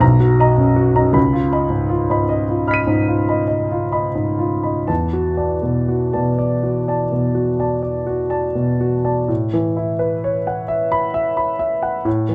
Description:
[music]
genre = classical, impressionist solo piano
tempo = 40-54 BPM (dotted quarters)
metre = 9/8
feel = rubato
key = A major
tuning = A4 = 440 Hz
[part]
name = warm grand piano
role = solo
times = 0.0-12.3 s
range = B1 to D#7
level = -18 LUFS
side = equal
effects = none
[sound]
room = light reverb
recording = close, detailed microphones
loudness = -18 LUFS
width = mono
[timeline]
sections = 0.0-9.3 A section; 9.3-12.3 B section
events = none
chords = 0.0 Bmaj7; 1.2 C#9; 4.9 E9sus4; 9.3 A69

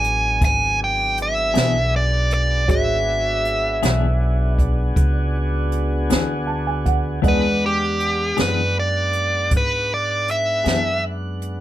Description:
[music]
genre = slow blues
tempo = 53 BPM (dotted quarters)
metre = 12/8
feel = straight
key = E mixolydian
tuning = A4 = 440 Hz
[part]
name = dark smooth lead guitar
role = melody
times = 0.0-11.0 s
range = G4 to G#5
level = -20 LUFS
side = right 1 dB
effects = overdrive
[part]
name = dark upright piano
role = accompaniment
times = 0.0-11.6 s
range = G#3 to A5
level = -27 LUFS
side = right 2 dB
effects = none
[part]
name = tonewheel organ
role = sustained chords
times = 0.0-11.6 s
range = F#3 to F#5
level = -29 LUFS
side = equal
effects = slow rotary speaker
[part]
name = upright bass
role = bass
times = 0.0-11.6 s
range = G#1 to G#2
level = -23 LUFS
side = equal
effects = none
[part]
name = jazz brush drum kit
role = drums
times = 0.0-11.6 s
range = hi-hat, kick drum, snare drum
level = -21 LUFS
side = equal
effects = none
[part]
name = clean electric guitar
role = accompaniment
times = 1.5-10.9 s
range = E3 to G#4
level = -25 LUFS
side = left 7 dB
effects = tremolo
[sound]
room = light reverb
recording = none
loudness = -17 LUFS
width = side -13 dB against mid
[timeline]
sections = 0.0-7.2 A section; 7.2-11.6 B section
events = upright piano fill 6.1-7.2; lead electric guitar solo 7.2-11.6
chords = 0.0 E7

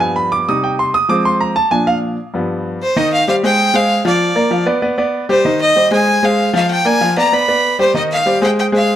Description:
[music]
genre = latin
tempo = 193 BPM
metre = 4/4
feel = straight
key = C minor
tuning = A4 = 440 Hz
[part]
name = clear baby grand piano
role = accompaniment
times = 0.0-9.0 s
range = G2 to Eb6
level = -14 LUFS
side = equal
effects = none
[part]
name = clear fiddle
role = melody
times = 2.8-9.0 s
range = C5 to B5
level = -14 LUFS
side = equal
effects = none
[sound]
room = moderate large studio reverb, RT60 1.2 s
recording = none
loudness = -12 LUFS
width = side -11 dB against mid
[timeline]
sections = 0.0-3.0 A section; 3.0-9.0 B section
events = grand piano solo 0.0-3.0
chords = 0.5 Cm; 1.1 Fm; 1.7 Bb; 2.3 G7; 3.0 Cm; 3.6 Fm; 4.2 Bb; 4.8 G; 5.5 Cm; 6.1 Fm; 6.7 Bb; 7.3 G; 7.9 Cm

